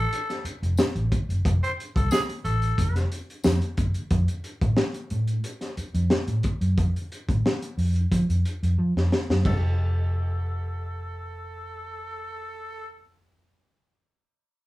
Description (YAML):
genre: funk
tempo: 90 BPM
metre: 4/4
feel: straight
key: F major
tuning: A4 = 441 Hz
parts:
  - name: growling tenor saxophone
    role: second line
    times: 0.0-3.1, 9.4-12.9 s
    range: Ab4 to C5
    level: -32 LUFS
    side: equal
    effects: slapback echo
  - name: vintage muted fingered electric bass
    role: bass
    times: 0.0-13.6 s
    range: F1 to F3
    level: -24 LUFS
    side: equal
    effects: tube saturation
  - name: crunchy breakbeat drum kit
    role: drums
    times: 0.1-9.6 s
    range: crash cymbal, hi-hat, kick drum, snare drum, toms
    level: -26 LUFS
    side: equal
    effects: none
  - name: tambourine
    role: percussion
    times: 0.8-3.6 s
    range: none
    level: -39 LUFS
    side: left 6 dB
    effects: none
room: little or no reverb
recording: rough home demo mix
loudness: -22 LUFS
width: side -18 dB against mid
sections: 0.0-9.4 A section; 9.4-12.1 B section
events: drum fill 8.8-9.4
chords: 0.0 F